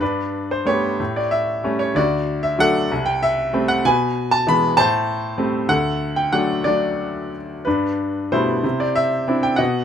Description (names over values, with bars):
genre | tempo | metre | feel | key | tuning
classical, lyrical solo piano | 59-66 BPM (dotted quarters) | 6/8 | rubato | G major | A4 = 440 Hz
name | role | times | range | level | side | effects
bright grand piano | solo | 0.0-9.8 s | C2 to B5 | -18 LUFS | equal | none
room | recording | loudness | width
light reverb | close, detailed microphones | -17 LUFS | side -8 dB against mid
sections
0.0-9.8 A section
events
none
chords
0.0 Gadd9; 1.0 A7; 2.0 D; 2.9 Am7/C; 3.8 E/B; 4.8 Am7; 5.7 D; 7.7 Gadd9; 8.6 Cadd9